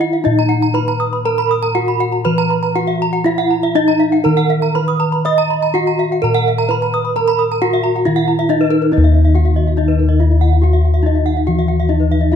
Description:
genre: gamelan.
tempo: 120-142 BPM.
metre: 4/4.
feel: straight.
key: Eb pelog.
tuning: A4 = 441 Hz.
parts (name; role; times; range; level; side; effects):
gamelan-type bronze metallophone; melody; 0.0-12.4 s; Eb4 to Eb5; -17 LUFS; equal; none.
gamelan-type bronze metallophone; arpeggios; 0.0-12.4 s; Bb4-30c to Eb6; -22 LUFS; left 4 dB; none.
gamelan-type bossed gongs; bass; 0.0-12.4 s; Eb2 to Eb5; -16 LUFS; left 1 dB; none.
gamelan-type bronze metallophone; arpeggios; 0.4-12.2 s; Cb5-20c to Eb6; -22 LUFS; right 8 dB; none.
room: light reverb.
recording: close, detailed microphones.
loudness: -12 LUFS.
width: side -8 dB against mid.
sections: 0.0-8.9 A section; 8.9-12.4 B section.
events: none.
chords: none.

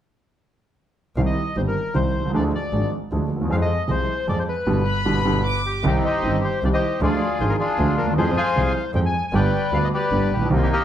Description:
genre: tango.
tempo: 154 BPM.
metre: 3/4.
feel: rubato.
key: C minor.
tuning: A4 = 440 Hz.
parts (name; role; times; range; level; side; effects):
bandoneon; melody; 1.2-10.8 s; Bb3 to Ab5; -24 LUFS; left 2 dB; none.
clear concert grand piano; accompaniment; 1.2-10.7 s; G1 to Ab4; -22 LUFS; right 2 dB; none.
clear double bass; bass; 1.2-10.7 s; G1 to F2; -25 LUFS; equal; none.
clear chamber violin section; second line; 4.9-5.8 s; B5 to D6; -26 LUFS; left 1 dB; none.
room: moderate large studio reverb, RT60 0.8 s.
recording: heard from further back in the room.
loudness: -19 LUFS.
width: side -10 dB against mid.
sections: 1.2-5.8 A section; 5.8-10.8 B section.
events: band accent 4.7-5.8.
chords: 1.2 Cm; 2.3 Ddim; 3.5 Fm; 4.7 G; 5.8 Cm; 7.0 Ddim; 8.2 Fm; 9.3 G.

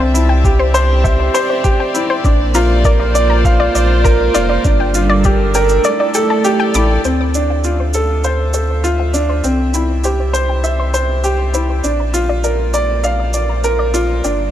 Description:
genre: piano and strings electronica.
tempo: 100 BPM.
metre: 4/4.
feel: straight.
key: unclear.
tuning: A4 = 440 Hz.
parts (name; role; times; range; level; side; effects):
dark studio string section; sustained chords; 0.0-14.5 s; G3 to A5; -21 LUFS; right 2 dB; sidechain pumping.
analog pluck; arpeggios; 0.0-14.3 s; C5 to D6; -22 LUFS; left 3 dB; chorus, sidechain pumping, ping-pong delay.
warm sub bass; bass; 0.0-14.5 s; F1 to D2; -16 LUFS; equal; sidechain pumping.
warm upright piano; riff; 0.1-14.4 s; C4 to F5; -17 LUFS; right 1 dB; ping-pong delay.
shaker; drums; 0.1-14.4 s; none; -25 LUFS; right 4 dB; small room ambience.
electronic kick drum; drums; 0.4-5.4 s; none; -14 LUFS; equal; small room ambience.
room: light reverb, studio reverb.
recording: none.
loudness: -12 LUFS.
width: side -11 dB against mid.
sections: 0.0-7.0 A section; 7.0-14.5 B section.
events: kick drops out 5.8-7.0; fade-in on string section 7.0-14.5; filter sweep on synth arpeggio sound 7.0-14.5.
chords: 0.0 C; 2.2 Bb; 4.6 Gm7; 5.8 A7sus4; 7.0 Dm7; 9.4 C; 11.8 Bb.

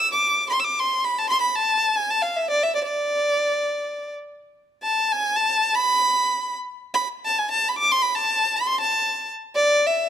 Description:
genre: balkan folk.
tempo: free time.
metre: none.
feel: none.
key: A harmonic minor.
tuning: A4 = 442 Hz.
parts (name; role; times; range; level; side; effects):
rich violin; solo; 0.0-10.1 s; D5 to E6; -20 LUFS; equal; none.
room: light reverb.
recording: close, detailed microphones.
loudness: -20 LUFS.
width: side -9 dB against mid.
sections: 0.0-9.6 A section.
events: violin solo 0.0-9.6.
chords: none.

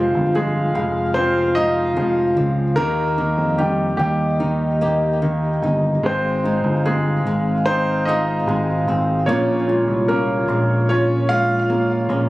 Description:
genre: pop ballad.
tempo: 74 BPM.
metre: 4/4.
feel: straight.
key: Ab major.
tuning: A4 = 440 Hz.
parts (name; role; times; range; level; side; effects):
warm baby grand piano; melody; 0.0-12.1 s; G3 to F5; -22 LUFS; equal; ping-pong delay.
bright concert grand piano; accompaniment; 0.0-12.3 s; Eb3 to F4; -24 LUFS; right 1 dB; none.
mellow French horn section; sustained chords; 0.0-12.3 s; Bb3 to F5; -25 LUFS; equal; none.
flamenco guitar; arpeggios; 0.0-12.3 s; F2 to G4; -26 LUFS; left 2 dB; ping-pong delay.
fingered electric bass; bass; 0.0-12.3 s; F1 to F2; -22 LUFS; equal; none.
room: light reverb, studio ambience.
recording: recorded on a phone in the room.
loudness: -16 LUFS.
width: side -18 dB against mid.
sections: 0.0-12.3 A section.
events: none.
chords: 0.0 Fm; 2.8 Eb; 6.0 Ab6; 9.3 Bbm7.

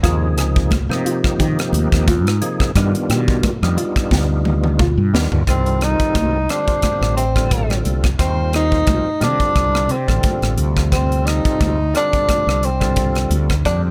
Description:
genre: electric jazz fusion.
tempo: 88 BPM.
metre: 4/4.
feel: swing 55% on 16ths.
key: C dorian from 5.5 s.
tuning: A4 = 440 Hz.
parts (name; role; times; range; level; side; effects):
percussive tonewheel organ; accompaniment; 0.0-13.9 s; C3 to C5; -26 LUFS; equal; slow rotary speaker, overdrive, chorus vibrato.
mellow electric guitar; stabs; 0.0-5.1 s; B3 to Ab4; -28 LUFS; equal; lush chorus.
mellow fretless electric bass; bass; 0.0-13.9 s; A1 to Eb3; -21 LUFS; equal; none.
crisp fusion drum kit; drums; 0.0-13.8 s; hi-hat, kick drum, rim click, snare drum, toms; -22 LUFS; equal; none.
congas; percussion; 0.0-13.8 s; none; -29 LUFS; equal; none.
mellow tenor saxophone; melody; 5.5-13.8 s; C4 to Eb4; -22 LUFS; equal; none.
room: little or no reverb.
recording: none.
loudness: -17 LUFS.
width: mono.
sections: 0.0-5.5 A section; 5.5-13.9 B section.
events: drum fill 4.1-5.5.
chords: 0.0 Eb9sus4; 2.8 G7b13; 5.5 Cm69; 10.6 Dm7.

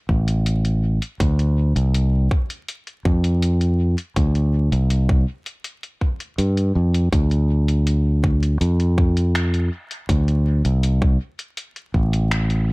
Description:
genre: ambient dub.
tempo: 81 BPM.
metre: 4/4.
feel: straight.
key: D minor.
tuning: A4 = 439 Hz.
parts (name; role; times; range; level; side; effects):
fingered electric bass; bass; 0.1-12.7 s; A1 to G2; -17 LUFS; equal; none.
electronic kick drum; drums; 0.1-12.1 s; none; -20 LUFS; equal; none.
lo-fi sampler-style drum kit; drums; 0.3-12.6 s; finger snaps, hi-hat; -29 LUFS; left 1 dB; dub echo.
room: digital ambience.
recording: vinyl crackle.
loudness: -17 LUFS.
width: side -28 dB against mid.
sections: 0.0-12.7 A section.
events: none.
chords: none.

